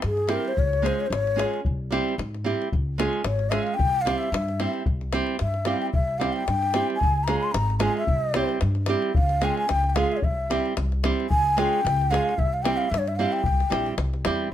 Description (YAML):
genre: balkan folk, Balkan wedding band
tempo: 112 BPM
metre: 2/4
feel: swing 55% on 16ths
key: C phrygian dominant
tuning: A4 = 443 Hz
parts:
  - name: upright bass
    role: bass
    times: 0.0-14.5 s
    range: Ab1 to Ab2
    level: -27 LUFS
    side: equal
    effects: none
  - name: davul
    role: percussion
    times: 0.0-14.4 s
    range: none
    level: -27 LUFS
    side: left 2 dB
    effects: none
  - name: breathy mellow ney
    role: melody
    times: 0.1-13.9 s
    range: Ab4 to C6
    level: -25 LUFS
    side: left 2 dB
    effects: plate reverb
  - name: nylon-string guitar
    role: accompaniment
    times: 0.3-14.5 s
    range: G3 to Ab4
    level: -26 LUFS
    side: right 4 dB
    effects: none
room: light reverb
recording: none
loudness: -22 LUFS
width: side -11 dB against mid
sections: 0.0-14.5 A section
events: ney solo 0.0-14.5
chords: 0.0 C; 0.6 Db; 1.6 C; 2.7 Db; 3.8 C; 7.0 Db; 8.1 C; 9.2 Db; 10.2 C; 11.3 Db; 12.4 C